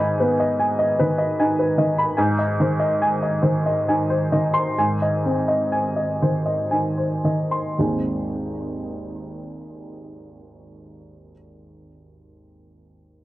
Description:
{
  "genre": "neoclassical minimalist piano",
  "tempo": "54-76 BPM",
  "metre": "3/4",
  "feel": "rubato",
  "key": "unclear",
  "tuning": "A4 = 440 Hz",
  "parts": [
    { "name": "warm upright piano", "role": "solo", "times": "0.0-13.2 s", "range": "G#1 to B#5", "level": "-19 LUFS", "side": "equal", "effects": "none" }
  ],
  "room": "light reverb, small room ambience",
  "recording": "home recording on cassette",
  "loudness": "-19 LUFS",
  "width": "side -16 dB against mid",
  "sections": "0.0-7.8 A section; 7.8-11.0 B section",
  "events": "slowing down 1.0-7.8",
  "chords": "0.0 G#m; 2.2 G#",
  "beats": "0.58 1.37 | 2.18 3.01 3.86 | 4.75 5.68 6.68 | 7.76 8.85 9.93"
}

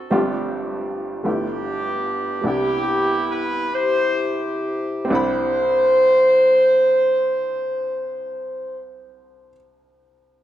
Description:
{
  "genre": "slow gospel",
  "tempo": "41-53 BPM (dotted quarters)",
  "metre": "6/8",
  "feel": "straight",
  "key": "C major",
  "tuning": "A4 = 437 Hz",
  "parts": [
    { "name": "mellow horn section", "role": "melody", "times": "0.0-8.8 s", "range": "B3 to C5", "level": "-18 LUFS", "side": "equal", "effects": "none" },
    { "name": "warm upright piano", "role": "accompaniment", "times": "0.0-10.4 s", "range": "G1 to B5", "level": "-24 LUFS", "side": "equal", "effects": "none" }
  ],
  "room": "wet plate reverb, RT60 3.3 s",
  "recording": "rough home demo mix",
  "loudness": "-17 LUFS",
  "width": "side -12 dB against mid",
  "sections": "0.0-5.1 A section; 5.1-8.1 B section",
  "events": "slowing down 0.1-5.1",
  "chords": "0.1 G7sus4; 1.3 G13; 2.4 Cmaj9",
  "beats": "| 0.12 1.26 | 2.44 3.71 | 5.11 6.58"
}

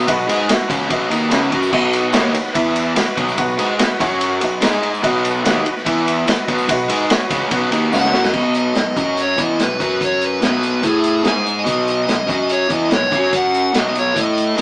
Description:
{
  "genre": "classic rock",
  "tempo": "145 BPM",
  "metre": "4/4",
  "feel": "straight",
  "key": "B major",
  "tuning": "A4 = 440 Hz",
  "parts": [
    { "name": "tonewheel organ", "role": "sustained chords", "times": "0.0-8.3 s", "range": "D#4 to F#5", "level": "-27 LUFS", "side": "equal", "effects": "none" },
    { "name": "crunchy overdriven guitar", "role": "riff", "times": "0.0-14.6 s", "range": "B2 to A4", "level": "-23 LUFS", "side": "right 1 dB", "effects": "none" },
    { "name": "overdriven semi-hollow guitar", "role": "riff", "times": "0.0-14.6 s", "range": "B2 to A4", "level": "-20 LUFS", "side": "left 1 dB", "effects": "none" },
    { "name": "fuzz fingered electric bass", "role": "bass", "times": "0.0-14.6 s", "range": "B1 to A2", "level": "-25 LUFS", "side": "equal", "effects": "overdrive" },
    { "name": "clear concert grand piano", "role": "accompaniment", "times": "0.1-8.3 s", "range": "D#4 to F#5", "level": "-22 LUFS", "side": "equal", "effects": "none" },
    { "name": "vintage drum kit", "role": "drums", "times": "0.1-14.6 s", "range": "crash cymbal, hi-hat, kick drum, ride cymbal, snare drum", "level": "-20 LUFS", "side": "equal", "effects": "none" },
    { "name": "tambourine", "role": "percussion", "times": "0.1-8.3 s", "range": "none", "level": "-38 LUFS", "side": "right 1 dB", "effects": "none" },
    { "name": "dark smooth lead guitar", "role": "melody", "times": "7.9-14.6 s", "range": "G#4 to G#5", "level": "-18 LUFS", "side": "equal", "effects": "overdrive" }
  ],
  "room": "wet studio reverb, RT60 0.7 s",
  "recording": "band playing live in one room, small speaker sound",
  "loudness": "-14 LUFS",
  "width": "side -23 dB against mid",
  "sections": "0.0-8.3 A section; 8.3-14.6 B section",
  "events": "grand piano fill 7.7-8.3; drum fill 7.9-8.3",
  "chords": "0.0 B; 2.6 E5; 3.0 B; 4.0 F#5; 4.4 B; 4.6 G#5; 5.0 B; 5.9 E5; 6.3 B; 8.3 B5; 9.0 F#5; 9.4 B; 9.8 F#5; 10.4 B5; 10.8 A5; 11.3 G#5; 11.7 B5; 12.3 F#5; 12.7 B; 13.1 F#5; 13.7 B; 14.2 A5",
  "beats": "| 0.07 0.49 0.90 1.32 | 1.73 2.14 2.56 2.97 | 3.38 3.80 4.21 4.62 | 5.04 5.45 5.86 6.28 | 6.69 7.10 7.52 7.93 | 8.35 8.76 9.18 9.59 | 10.01 10.42 10.84 11.25 | 11.67 12.08 12.50 12.91 | 13.33 13.74 14.16 14.57"
}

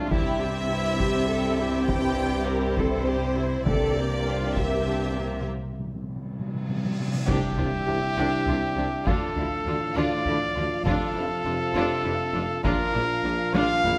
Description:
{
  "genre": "cinematic, epic orchestral film score",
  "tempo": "67 BPM (dotted quarters)",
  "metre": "6/8",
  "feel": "straight",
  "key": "C mixolydian",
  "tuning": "A4 = 440 Hz",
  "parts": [
    { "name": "warm symphonic violin section", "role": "second line", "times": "0.0-13.9 s", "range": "A3 to Bb4", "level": "-37 LUFS", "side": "equal", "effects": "none" },
    { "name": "rich chamber viola section", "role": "accompaniment", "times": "0.0-13.9 s", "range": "D4 to A4", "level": "-34 LUFS", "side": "equal", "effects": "none" },
    { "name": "clear trombone section", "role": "sustained chords", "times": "0.0-14.0 s", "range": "G2 to G3", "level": "-38 LUFS", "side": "equal", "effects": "none" },
    { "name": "mellow French horn section", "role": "sustained chords", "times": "0.0-14.0 s", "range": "Bb3 to G4", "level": "-34 LUFS", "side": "equal", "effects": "none" },
    { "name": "rich chamber double bass section", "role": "bass", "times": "0.0-13.9 s", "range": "F1 to D2", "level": "-36 LUFS", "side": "equal", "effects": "none" },
    { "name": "rich symphonic cello section", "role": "bass", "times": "0.0-13.9 s", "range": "F2 to D3", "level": "-35 LUFS", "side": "equal", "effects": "none" },
    { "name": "warm studio violin section", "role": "melody", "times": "0.1-14.0 s", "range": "Bb4 to G5", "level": "-36 LUFS", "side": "equal", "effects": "none" },
    { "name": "taiko ensemble", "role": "drums", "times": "0.1-14.0 s", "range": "none", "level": "-32 LUFS", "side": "equal", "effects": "none" },
    { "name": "timpani", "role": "percussion", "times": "0.1-1.0, 3.7-8.1 s", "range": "C3", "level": "-35 LUFS", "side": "equal", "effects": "none" },
    { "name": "cymbal swell and impact", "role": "sound effects", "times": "6.3-9.1 s", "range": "none", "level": "-41 LUFS", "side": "equal", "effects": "none" },
    { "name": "bright trumpet", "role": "stabs", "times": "7.3-14.0 s", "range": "G4 to F5", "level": "-30 LUFS", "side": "equal", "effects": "none" },
    { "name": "warm tuba", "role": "bass", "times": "7.3-14.0 s", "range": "F1 to D2", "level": "-36 LUFS", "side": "equal", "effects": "none" }
  ],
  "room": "moderate scoring stage reverb, RT60 1.6 s",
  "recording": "close, detailed microphones",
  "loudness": "-26 LUFS",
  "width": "mono",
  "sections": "0.0-7.3 A section; 7.3-14.0 B section",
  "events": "timpani fill 3.7-7.3; break 5.5-7.3; drum fill 6.4-7.3, 13.5-14.0; cymbal swell 6.4-7.3; impact 7.3-9.1",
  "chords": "0.1 C; 3.7 Gm/C; 7.3 Cadd9; 9.1 Dm; 10.9 F6; 12.6 Bb",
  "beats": "| 0.12 1.00 | 1.89 2.78 | 3.66 4.56 | 5.46 6.37 | 7.28 8.18 | 9.07 9.97 | 10.86 11.75 | 12.64 13.54"
}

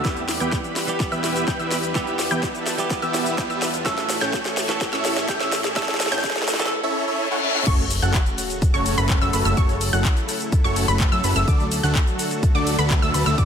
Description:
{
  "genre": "EDM, festival progressive house",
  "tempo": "126 BPM",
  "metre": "4/4",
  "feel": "straight",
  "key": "unclear",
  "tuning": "A4 = 440 Hz",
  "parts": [
    { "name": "direct-recorded clean electric guitar", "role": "accompaniment", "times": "0.0-6.7 s", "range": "A2 to A4", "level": "-28 LUFS", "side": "right 3 dB", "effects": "sidechain pumping, tape echo" },
    { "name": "supersaw pad", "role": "sustained chords", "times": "0.0-13.4 s", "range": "C#3 to C#6", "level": "-30 LUFS", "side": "equal", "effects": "sidechain pumping" },
    { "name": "wide unison pluck", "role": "arpeggios", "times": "0.0-13.4 s", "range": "B5 to G6", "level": "-27 LUFS", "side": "equal", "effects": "sidechain pumping, tape echo" },
    { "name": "dense compressed supersaw", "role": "riff", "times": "0.0-13.4 s", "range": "A3 to G5", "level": "-26 LUFS", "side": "right 1 dB", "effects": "sidechain pumping, low-pass filter, tape echo" },
    { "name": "fat analog bass", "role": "bass", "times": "0.0-13.4 s", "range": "F#1 to F#2", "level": "-25 LUFS", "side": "equal", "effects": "sidechain pumping" },
    { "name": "electronic kick drum", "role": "drums", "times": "0.0-13.4 s", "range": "none", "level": "-21 LUFS", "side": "equal", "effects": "overdrive" },
    { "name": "house drum kit", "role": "drums", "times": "0.0-13.4 s", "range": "crash cymbal, handclaps, hi-hat, ride cymbal, shaker, snare drum", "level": "-26 LUFS", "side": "left 1 dB", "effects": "overdrive" },
    { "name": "riser, reverse cymbal and sub drop", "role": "sound effects", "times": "0.2-9.6 s", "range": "none", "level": "-31 LUFS", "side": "left 1 dB", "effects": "none" }
  ],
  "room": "moderate digital room reverb, RT60 1.0 s",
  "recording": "dense, heavily limited modern master, high-pass filter",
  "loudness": "-19 LUFS",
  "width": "side -7 dB against mid",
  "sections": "0.0-7.7 A section; 7.7-13.4 B section",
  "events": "build-up 0.0-7.7; drum fill 0.0-6.7; filter sweep on synth pluck 0.0-7.7; reverse cymbal 6.7-7.7; drop 7.7-13.4; impact 7.7-9.6",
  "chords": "0.0 Em; 3.9 A; 7.7 F#m; 11.5 D",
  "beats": "| 0.05 0.52 1.00 1.48 | 1.95 2.43 2.90 3.38 | 3.86 4.33 4.81 5.29 | 5.76 6.24 6.71 7.19 | 7.67 8.14 8.62 9.10 | 9.57 10.05 10.52 11.00 | 11.48 11.95 12.43 12.90 | 13.38"
}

